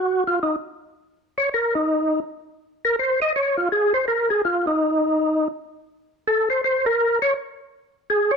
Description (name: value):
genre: jazz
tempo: 164 BPM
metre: 4/4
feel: swing 65% on 8ths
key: unclear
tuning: A4 = 440 Hz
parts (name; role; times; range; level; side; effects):
- overdriven tonewheel organ; solo; 0.0-8.4 s; Eb4 to Eb5; -19 LUFS; equal; slow rotary speaker, chorus vibrato
room: light reverb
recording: dark, warm production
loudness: -19 LUFS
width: side -5 dB against mid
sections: 0.0-8.4 A section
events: tonewheel organ solo 0.0-8.4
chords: none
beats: 0.03 0.39 0.76 | 1.12 1.49 1.85 2.22 | 2.58 2.95 3.31 3.68 | 4.05 4.41 4.78 5.14 | 5.51 5.87 6.24 6.60 | 6.97 7.33 7.70 8.06